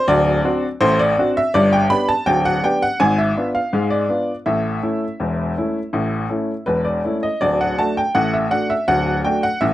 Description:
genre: ragtime piano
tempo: 82 BPM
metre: 2/4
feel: straight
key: D major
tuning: A4 = 440 Hz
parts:
  - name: bright upright piano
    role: solo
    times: 0.0-9.7 s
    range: D1 to B5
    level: -16 LUFS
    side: equal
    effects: none
room: light reverb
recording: dry, close 1970s-style studio recording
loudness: -16 LUFS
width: side -14 dB against mid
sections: 0.0-9.7 A section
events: none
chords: 0.0 D7; 1.5 G; 3.0 G#dim7; 4.5 A; 7.4 D

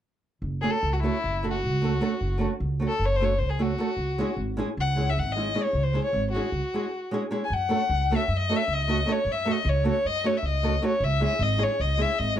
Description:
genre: balkan folk, Balkan wedding band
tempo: free time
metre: none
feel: none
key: unclear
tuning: A4 = 441 Hz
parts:
  - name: upright bass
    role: bass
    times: 0.4-12.4 s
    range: F#1 to F#2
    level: -27 LUFS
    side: right 1 dB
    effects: none
  - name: rich violin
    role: melody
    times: 0.6-12.4 s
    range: E4 to G#5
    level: -27 LUFS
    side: left 3 dB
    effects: plate reverb
  - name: nylon-string guitar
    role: accompaniment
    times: 0.6-12.4 s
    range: G#3 to A4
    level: -28 LUFS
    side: right 3 dB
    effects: none
room: moderate studio ambience, RT60 0.5 s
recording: none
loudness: -23 LUFS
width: side -10 dB against mid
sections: 0.4-7.5 A section; 7.5-12.4 B section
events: break 6.6-7.5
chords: 0.4 F#m; 4.0 C#m; 7.5 F#m; 11.0 C#m

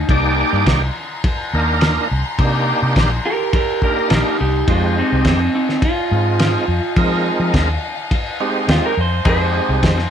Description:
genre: straight-eighth soul blues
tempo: 105 BPM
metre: 4/4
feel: straight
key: unclear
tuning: A4 = 439 Hz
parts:
  - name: electric guitar through a small old amp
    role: melody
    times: 0.0-10.1 s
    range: Ab3 to C5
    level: -20 LUFS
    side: right 2 dB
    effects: slapback echo
  - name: rich symphonic string section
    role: sustained chords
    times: 0.0-10.1 s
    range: Eb5 to C6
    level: -28 LUFS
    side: left 4 dB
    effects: none
  - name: vintage muted fingered electric bass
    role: bass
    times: 0.0-10.1 s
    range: Bb1 to F3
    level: -19 LUFS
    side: equal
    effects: none
  - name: overdriven tonewheel organ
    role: accompaniment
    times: 0.1-10.0 s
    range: Ab3 to D5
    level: -20 LUFS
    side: right 2 dB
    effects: slow rotary speaker, chorus vibrato
  - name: cloth-damped thuddy drum kit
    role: drums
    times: 0.1-10.1 s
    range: kick drum, ride cymbal, snare drum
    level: -20 LUFS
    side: left 1 dB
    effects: none
  - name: direct-recorded clean electric guitar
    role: stabs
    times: 9.3-10.0 s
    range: Eb3 to Ab4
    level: -26 LUFS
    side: left 5 dB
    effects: none
room: light reverb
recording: none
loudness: -14 LUFS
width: side -8 dB against mid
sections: 0.0-10.1 A section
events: clean electric guitar solo 0.0-10.1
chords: 0.1 Cm7; 4.7 Fm7

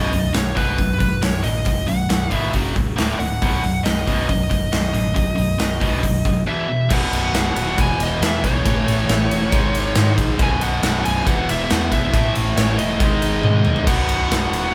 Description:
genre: hard rock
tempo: 138 BPM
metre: 4/4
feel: straight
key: B mixolydian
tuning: A4 = 440 Hz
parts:
  - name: high-gain lead guitar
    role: melody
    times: 0.0-14.7 s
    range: B4 to G#5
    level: -27 LUFS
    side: equal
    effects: distortion
  - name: high-gain distorted guitar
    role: riff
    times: 0.0-14.7 s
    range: B1 to A3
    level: -24 LUFS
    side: equal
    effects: distortion
  - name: hollow-body short-scale fingered electric bass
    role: bass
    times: 0.0-14.7 s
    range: B0 to G#2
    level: -26 LUFS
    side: equal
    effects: none
  - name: big rock drum kit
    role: drums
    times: 0.1-14.6 s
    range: crash cymbal, hi-hat, kick drum, ride cymbal, snare drum, toms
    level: -24 LUFS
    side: equal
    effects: none
room: light reverb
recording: band playing live in one room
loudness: -19 LUFS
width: mono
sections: 0.0-6.9 A section; 6.9-14.7 B section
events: drum fill 13.4-13.9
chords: 0.0 B; 2.5 F#5; 3.0 D5; 3.4 B; 6.5 E5; 6.9 B; 7.8 E5; 8.6 A; 9.5 G#5; 10.4 B5; 11.3 E5; 12.1 A5; 13.0 G#5; 13.9 B

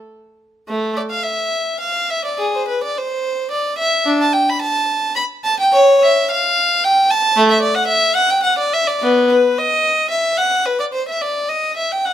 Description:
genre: classical, baroque-style suite movement for unaccompanied violin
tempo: 72 BPM (dotted quarters)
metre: 6/8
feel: uneven beats, rubato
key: A minor, E minor from 7.4 s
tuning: A4 = 440 Hz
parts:
  - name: warm violin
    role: solo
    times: 0.7-12.1 s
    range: A3 to B5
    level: -14 LUFS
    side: equal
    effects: none
room: moderate stone room reverb, RT60 1.0 s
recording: minimal, uncompressed stereo recording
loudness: -14 LUFS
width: side -11 dB against mid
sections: 0.7-12.1 A section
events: none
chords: none

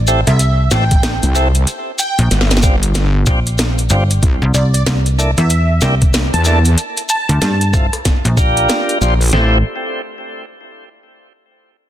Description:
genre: glitch hop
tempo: 94 BPM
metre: 4/4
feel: swing 62% on 16ths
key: A phrygian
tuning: A4 = 440 Hz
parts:
  - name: slap-like FM bass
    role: bass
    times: 0.0-8.7 s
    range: G1 to G2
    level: -14 LUFS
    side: equal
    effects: none
  - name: tonewheel organ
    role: stabs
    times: 0.1-9.6 s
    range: A3 to C5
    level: -20 LUFS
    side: equal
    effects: slow rotary speaker, sidechain pumping, digital delay
  - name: maracas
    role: percussion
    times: 0.1-9.3 s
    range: none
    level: -24 LUFS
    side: left 2 dB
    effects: none
  - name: plucky unison lead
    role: melody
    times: 0.3-7.9 s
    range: D5 to A5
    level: -21 LUFS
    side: right 1 dB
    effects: digital delay
  - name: drum and bass drum kit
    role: drums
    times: 0.3-9.3 s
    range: hi-hat, rim click, snare drum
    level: -20 LUFS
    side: equal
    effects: soft clipping on snare
  - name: boom bap sampler-style drum kit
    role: drums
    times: 0.9-9.5 s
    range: kick drum, snare drum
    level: -15 LUFS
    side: equal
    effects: none
  - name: wobble bass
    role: bass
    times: 1.2-9.6 s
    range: G1 to E2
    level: -13 LUFS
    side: equal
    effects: chorus
room: digital ambience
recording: dense, heavily limited modern master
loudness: -12 LUFS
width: side -12 dB against mid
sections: 0.0-9.3 A section; 9.3-11.9 B section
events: drop 0.0-9.3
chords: 0.0 Am7; 1.7 Bb6; 4.2 C13; 6.8 Dm7 (rootless); 8.1 Bb69; 9.3 Am7

